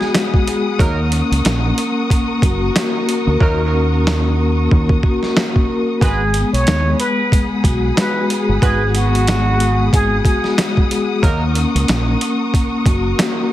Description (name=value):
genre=hip hop, boom-bap hip-hop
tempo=92 BPM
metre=4/4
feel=swing 57% on 16ths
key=G# minor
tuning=A4 = 438 Hz
part: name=trumpet with plunger mute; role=melody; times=0.0-0.1, 6.0-10.5 s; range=F#4 to C#5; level=-21 LUFS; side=right 1 dB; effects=high-pass filter, low-pass filter, tape echo
part: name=vibraphone with soft mallets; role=accompaniment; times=0.0-13.5 s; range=G#3 to A#4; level=-19 LUFS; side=left 2 dB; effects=cassette tape, high-pass filter, low-pass filter
part: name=warm studio string section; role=sustained chords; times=0.0-13.5 s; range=G#4 to D#6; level=-25 LUFS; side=left 1 dB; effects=high-pass filter, low-pass filter
part: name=boom bap sampler-style drum kit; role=drums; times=0.0-13.4 s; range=hi-hat, kick drum, snare drum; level=-17 LUFS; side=equal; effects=none
part: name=mellow horn section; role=stabs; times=0.8-11.4 s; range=F#3 to B4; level=-25 LUFS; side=right 2 dB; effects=high-pass filter, low-pass filter, tape echo
part: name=deep dub fingered electric bass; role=bass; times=0.8-13.1 s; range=F#1 to D#2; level=-17 LUFS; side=equal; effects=none
room=light reverb, studio ambience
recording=heavily compressed radio sound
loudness=-14 LUFS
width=side -14 dB against mid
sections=0.0-13.5 A section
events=hi-hats muted 3.4-6.0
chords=0.0 G#m7; 0.8 D#m7; 6.0 G#m7; 11.2 D#m7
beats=0.14 | 0.80 1.45 2.10 2.75 | 3.40 4.06 4.71 5.36 | 6.01 6.67 7.32 7.97 | 8.62 9.27 9.93 10.58 | 11.23 11.88 12.53 13.19